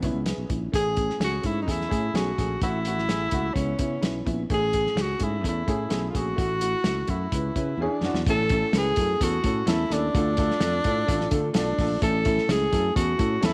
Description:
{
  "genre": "uptempo 1960s-style soul",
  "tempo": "128 BPM",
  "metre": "4/4",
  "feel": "straight",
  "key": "A major",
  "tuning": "A4 = 440 Hz",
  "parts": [
    { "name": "dark upright piano", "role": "accompaniment", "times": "0.0-13.5 s", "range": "A2 to B4", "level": "-32 LUFS", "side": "equal", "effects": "none" },
    { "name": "fingered electric bass", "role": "bass", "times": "0.0-13.5 s", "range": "A1 to D3", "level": "-31 LUFS", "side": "equal", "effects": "none" },
    { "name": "warm soul drum kit", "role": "drums", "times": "0.0-13.5 s", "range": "hi-hat, kick drum, snare drum", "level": "-30 LUFS", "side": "equal", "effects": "none" },
    { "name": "mellow tenor saxophone", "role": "melody", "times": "0.8-13.5 s", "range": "C#4 to A4", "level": "-29 LUFS", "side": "equal", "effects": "none" }
  ],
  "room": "light reverb, studio reverb",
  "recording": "none",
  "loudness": "-25 LUFS",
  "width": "mono",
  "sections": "0.0-8.3 A section; 8.3-13.5 B section",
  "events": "drum fill 7.8-8.3",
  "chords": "0.0 C#m7; 0.7 Amaj7; 2.6 F#m7/A; 3.6 C#m7; 4.5 Amaj7; 6.4 F#m7/A; 7.3 C#m7; 7.8 E7; 8.3 A; 10.1 Dm; 12.0 A"
}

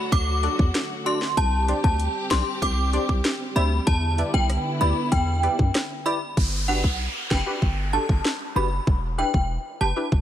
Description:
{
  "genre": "dancehall",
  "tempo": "96 BPM",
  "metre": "4/4",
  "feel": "straight",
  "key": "G major",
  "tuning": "A4 = 442 Hz",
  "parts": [
    { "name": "warm studio string section", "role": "sustained chords", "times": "0.0-6.3 s", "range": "D3 to G4", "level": "-30 LUFS", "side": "equal", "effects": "none" },
    { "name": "synth chime", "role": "melody", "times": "0.1-9.9 s", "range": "F#5 to D6", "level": "-27 LUFS", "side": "equal", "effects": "ensemble chorus, phaser, digital delay" },
    { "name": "warm 808-style bass", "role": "bass", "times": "0.1-10.2 s", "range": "E1 to F#2", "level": "-24 LUFS", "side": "equal", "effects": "none" },
    { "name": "island pop drum kit", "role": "drums", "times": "0.1-10.2 s", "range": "crash cymbal, hi-hat, kick drum, rim click, snare drum", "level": "-24 LUFS", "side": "equal", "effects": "none" },
    { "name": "punchy chord stab", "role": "accompaniment", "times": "0.4-10.1 s", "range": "D4 to E5", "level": "-30 LUFS", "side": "left 1 dB", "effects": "chorus" },
    { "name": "downlifter", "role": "sound effects", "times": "6.4-10.2 s", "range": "none", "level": "-32 LUFS", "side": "right 1 dB", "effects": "none" }
  ],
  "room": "digital ambience",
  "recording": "none",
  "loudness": "-21 LUFS",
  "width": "side -11 dB against mid",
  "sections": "0.0-6.4 A section; 6.4-10.2 B section",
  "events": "none",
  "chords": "0.0 D; 1.4 Csus2; 3.9 Em7; 6.4 Gmaj7; 8.9 Em7"
}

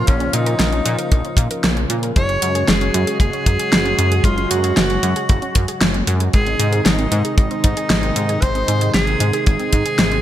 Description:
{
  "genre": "synthwave",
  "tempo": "115 BPM",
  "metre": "4/4",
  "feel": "straight",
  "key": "unclear",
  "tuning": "A4 = 441 Hz",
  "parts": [
    { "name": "warm tenor saxophone", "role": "melody", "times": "0.0-10.2 s", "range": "Db4 to Db5", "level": "-22 LUFS", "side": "right 1 dB", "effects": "ping-pong delay" },
    { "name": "warm analog pad", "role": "sustained chords", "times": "0.0-10.2 s", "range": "C3 to Gb4", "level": "-25 LUFS", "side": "equal", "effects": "wide subtle chorus, sidechain pumping" },
    { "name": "wide unison pluck", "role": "arpeggios", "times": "0.0-10.2 s", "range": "Ab3 to Bb4", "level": "-28 LUFS", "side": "right 2 dB", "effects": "vintage 12-bit sampler grit, ping-pong delay" },
    { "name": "chorused synth bass", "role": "bass", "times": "0.0-10.2 s", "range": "Gb1 to Bb2", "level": "-20 LUFS", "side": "equal", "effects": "tube saturation" },
    { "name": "kick drum", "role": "drums", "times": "0.1-9.8 s", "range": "none", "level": "-15 LUFS", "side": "equal", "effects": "none" },
    { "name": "pop drum kit", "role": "drums", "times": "0.1-10.2 s", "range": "hi-hat, snare drum", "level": "-20 LUFS", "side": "equal", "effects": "overdrive, gated reverb" }
  ],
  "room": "light reverb, small room ambience",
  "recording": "bright 1980s-style digital production",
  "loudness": "-15 LUFS",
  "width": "side -12 dB against mid",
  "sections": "0.0-10.2 A section",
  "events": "none",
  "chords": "0.0 Bbm; 2.2 Gbsus2; 6.3 Ab"
}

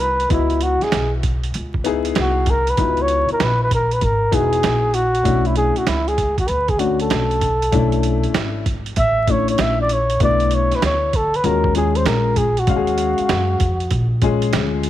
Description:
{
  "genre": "hip hop, jazz-hop",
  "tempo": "97 BPM",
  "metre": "4/4",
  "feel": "swing 65% on 16ths",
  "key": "unclear",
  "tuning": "A4 = 441 Hz",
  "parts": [
    { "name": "breathy flugelhorn", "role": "melody", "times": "0.0-14.1 s", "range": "E4 to E5", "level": "-19 LUFS", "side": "equal", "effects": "none" },
    { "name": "dark upright piano", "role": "accompaniment", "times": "0.0-14.9 s", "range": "G#3 to E#5", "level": "-23 LUFS", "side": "left 8 dB", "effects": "none" },
    { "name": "upright bass", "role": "bass", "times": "0.0-14.9 s", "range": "E1 to F#2", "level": "-21 LUFS", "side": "equal", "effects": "none" },
    { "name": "trip hop sampler-style drum kit", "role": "drums", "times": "0.2-14.9 s", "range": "hi-hat, kick drum, snare drum", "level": "-23 LUFS", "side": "right 2 dB", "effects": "none" }
  ],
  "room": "studio ambience",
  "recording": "1960s-style stereo, vinyl crackle",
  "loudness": "-16 LUFS",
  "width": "side -12 dB against mid",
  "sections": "0.0-14.9 A section",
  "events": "flugelhorn solo 0.0-14.9",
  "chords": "0.0 C#m11; 5.3 Bm11; 11.4 D#m11"
}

